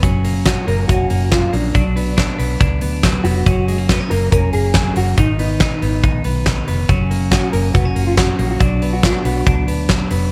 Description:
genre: jangly indie pop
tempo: 140 BPM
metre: 4/4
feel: straight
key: F# major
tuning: A4 = 439 Hz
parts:
  - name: twelve-string electric guitar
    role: arpeggios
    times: 0.0-10.3 s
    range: D#3 to D#4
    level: -24 LUFS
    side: equal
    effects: none
  - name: vintage muted fingered electric bass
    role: bass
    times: 0.0-10.3 s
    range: E#1 to D2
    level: -22 LUFS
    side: equal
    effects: none
  - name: big rock drum kit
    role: drums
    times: 0.0-10.2 s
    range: hi-hat, kick drum, snare drum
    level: -20 LUFS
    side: equal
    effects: none
  - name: mellow electric guitar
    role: melody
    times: 0.5-9.6 s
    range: D4 to A#4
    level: -24 LUFS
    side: equal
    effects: ensemble chorus
room: little or no reverb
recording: none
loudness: -16 LUFS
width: mono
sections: 0.0-10.3 A section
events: none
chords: 0.0 F#; 1.7 Bm; 3.5 F#; 5.2 G#m; 6.9 F#; 8.6 Bm

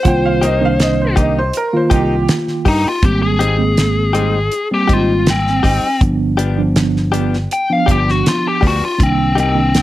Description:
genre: straight-eighth soul blues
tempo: 81 BPM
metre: 4/4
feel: straight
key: C minor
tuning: A4 = 440 Hz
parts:
  - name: biting lead guitar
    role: melody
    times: 0.0-9.8 s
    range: C4 to G5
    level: -17 LUFS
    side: left 3 dB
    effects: overdrive
  - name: bright upright piano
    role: second line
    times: 0.0-2.3 s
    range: G4 to G5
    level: -20 LUFS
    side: right 3 dB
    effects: tape echo
  - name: mellow tine electric piano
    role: accompaniment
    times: 0.0-9.8 s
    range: Eb3 to F4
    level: -18 LUFS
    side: right 3 dB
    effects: medium stereo tremolo
  - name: damped 70s drum kit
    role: drums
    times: 0.0-9.8 s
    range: hi-hat, kick drum, snare drum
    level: -16 LUFS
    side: equal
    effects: none
  - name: fingered electric bass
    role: bass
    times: 0.1-9.8 s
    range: G1 to G2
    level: -18 LUFS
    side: equal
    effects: none
  - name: direct-recorded clean electric guitar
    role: stabs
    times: 0.4-9.6 s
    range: F3 to G4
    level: -21 LUFS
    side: left 5 dB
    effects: vibrato effect
room: moderate studio reverb, RT60 0.8 s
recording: none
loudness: -12 LUFS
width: side -15 dB against mid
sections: 0.0-9.8 A section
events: none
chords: 0.0 Cm7; 3.0 Abmaj7; 6.0 G7; 9.0 Cm7

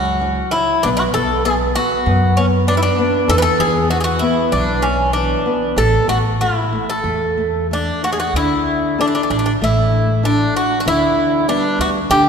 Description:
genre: fado-style ballad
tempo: 96 BPM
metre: 4/4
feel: rubato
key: A major, D major from 8.3 s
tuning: A4 = 440 Hz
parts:
  - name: Greek bouzouki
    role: melody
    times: 0.0-12.3 s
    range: C#4 to B4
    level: -17 LUFS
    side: equal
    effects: none
  - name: flamenco guitar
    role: accompaniment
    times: 0.0-12.3 s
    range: D3 to A4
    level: -20 LUFS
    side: left 1 dB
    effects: none
  - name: upright bass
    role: bass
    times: 0.0-12.3 s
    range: A1 to F#2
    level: -20 LUFS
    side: equal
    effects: none
room: wet church reverb, RT60 2.8 s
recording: recorded in a church or concert hall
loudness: -14 LUFS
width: side -6 dB against mid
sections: 0.0-8.3 A section; 8.3-12.3 B section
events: none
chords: 0.0 F#5; 0.8 B5; 3.3 E5; 5.8 A5; 8.3 Dsus2; 10.9 G/D

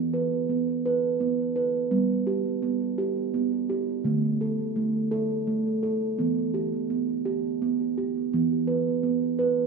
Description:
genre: world meditative, meditative tuned percussion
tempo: 56 BPM (dotted quarters)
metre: 6/8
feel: straight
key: E minor pentatonic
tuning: A4 = 439 Hz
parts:
  - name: steel tongue drum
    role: solo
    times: 0.0-9.7 s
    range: D3 to B4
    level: -24 LUFS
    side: right 4 dB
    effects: diffuse ambient delay
room: wet echo chamber reverb, RT60 1.3 s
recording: small room ambience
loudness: -24 LUFS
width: side -4 dB against mid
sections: 0.0-9.7 A section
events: none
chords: 0.0 E5; 1.9 G; 4.1 D5; 6.2 Em

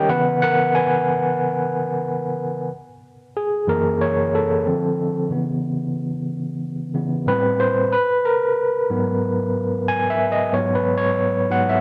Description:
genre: R&B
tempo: 92 BPM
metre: 4/4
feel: swing 54% on 16ths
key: G# minor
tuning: A4 = 440 Hz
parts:
  - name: overdriven tine electric piano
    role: solo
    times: 0.0-11.8 s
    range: F#2 to G#5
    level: -21 LUFS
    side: equal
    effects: fast tremolo, slapback echo
room: light reverb, digital ambience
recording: rough home demo mix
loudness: -21 LUFS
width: mono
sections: 0.0-2.7 A section; 2.7-11.8 B section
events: tine electric piano solo 0.0-2.7, 2.7-11.8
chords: 0.1 C#m7; 2.7 F#7; 4.7 Dm7; 5.3 C#m7; 7.3 Am9; 7.9 G#m7

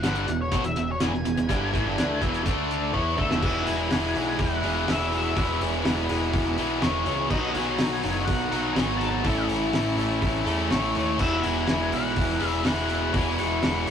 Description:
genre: classic rock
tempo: 124 BPM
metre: 4/4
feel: straight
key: E major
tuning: A4 = 437 Hz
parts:
  - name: octave-fuzz lead guitar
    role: melody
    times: 0.0-13.9 s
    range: C#5 to C#6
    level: -31 LUFS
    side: left 2 dB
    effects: distortion
  - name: bright tonewheel organ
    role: sustained chords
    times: 0.0-13.9 s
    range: A3 to D5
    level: -39 LUFS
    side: right 2 dB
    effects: none
  - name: biting overdriven guitar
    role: riff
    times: 0.0-13.9 s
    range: E2 to E4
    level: -28 LUFS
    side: equal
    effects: none
  - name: distorted electric guitar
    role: riff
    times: 0.0-13.9 s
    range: E2 to A4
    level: -32 LUFS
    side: right 3 dB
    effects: distortion
  - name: tight distorted guitar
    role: riff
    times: 0.0-13.9 s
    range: E2 to G#4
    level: -31 LUFS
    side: left 4 dB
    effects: distortion
  - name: growling picked electric bass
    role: bass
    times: 0.0-13.9 s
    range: E1 to E2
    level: -31 LUFS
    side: equal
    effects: overdrive
  - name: cloth-damped thuddy drum kit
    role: drums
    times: 0.0-13.9 s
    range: crash cymbal, hi-hat, kick drum, snare drum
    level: -29 LUFS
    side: equal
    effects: none
room: wet booth ambience, RT60 0.2 s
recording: rough rehearsal-room recording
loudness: -22 LUFS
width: side -8 dB against mid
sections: 0.0-3.4 A section; 3.4-13.9 B section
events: lead electric guitar solo 0.0-3.4; drum fill 2.9-3.4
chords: 0.0 E; 2.5 D5; 2.9 E; 7.3 B; 9.2 A; 11.2 E

